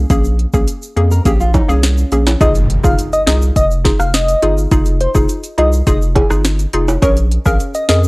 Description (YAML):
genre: dancehall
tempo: 104 BPM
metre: 4/4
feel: straight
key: F minor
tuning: A4 = 441 Hz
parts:
  - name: hollow square pluck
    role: accompaniment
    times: 0.0-8.1 s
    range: Bb3 to Bb4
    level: -19 LUFS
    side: left 1 dB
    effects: chorus
  - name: saturated sub bass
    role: bass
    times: 0.0-8.1 s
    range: F1 to F2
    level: -15 LUFS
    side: equal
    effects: none
  - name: afro-pop drum kit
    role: drums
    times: 0.1-8.0 s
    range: hi-hat, kick drum, rim click, snare drum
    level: -15 LUFS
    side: equal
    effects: none
  - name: tube shaker and timbales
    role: percussion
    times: 0.1-8.1 s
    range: none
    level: -24 LUFS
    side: right 2 dB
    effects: none
  - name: nylon-string guitar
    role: arpeggios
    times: 1.1-2.4 s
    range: Db4 to Bb4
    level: -22 LUFS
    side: right 1 dB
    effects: tape echo
  - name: soft struck synth lead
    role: melody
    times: 2.4-8.0 s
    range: Ab4 to F5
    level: -17 LUFS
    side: equal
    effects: chorus
  - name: impact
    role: sound effects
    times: 2.4-4.7 s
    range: none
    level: -22 LUFS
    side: equal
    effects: none
room: digital ambience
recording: dry, gritty hardware recording, transformer saturation, cassette tape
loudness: -11 LUFS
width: side -24 dB against mid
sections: 0.0-2.4 A section; 2.4-8.1 B section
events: impact 2.4-4.7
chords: 0.0 Bbm7; 2.4 Fm7; 7.0 Bbm7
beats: | 0.10 0.68 1.25 1.83 | 2.41 2.99 3.56 4.14 | 4.72 5.29 5.87 6.45 | 7.03 7.60